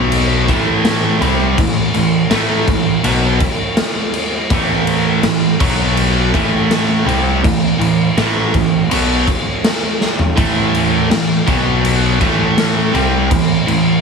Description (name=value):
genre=quiet-loud alternative rock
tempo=82 BPM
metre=4/4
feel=straight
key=A minor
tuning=A4 = 440 Hz
part: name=distorted electric guitar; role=riff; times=0.0-14.0 s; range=A2 to C4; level=-15 LUFS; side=right 2 dB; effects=distortion
part: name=growling picked electric bass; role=bass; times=0.0-14.0 s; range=A1 to C2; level=-19 LUFS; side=equal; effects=overdrive
part: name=raw garage drum kit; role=drums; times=0.1-13.8 s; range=crash cymbal, kick drum, snare drum, toms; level=-17 LUFS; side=left 1 dB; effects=none
room=small room ambience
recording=heavily compressed radio sound, multiband compression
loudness=-12 LUFS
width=side -5 dB against mid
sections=0.0-14.0 A section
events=drum fill 10.0-10.4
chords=0.5 Am; 5.6 B5; 6.3 Am; 11.5 B5; 12.2 Am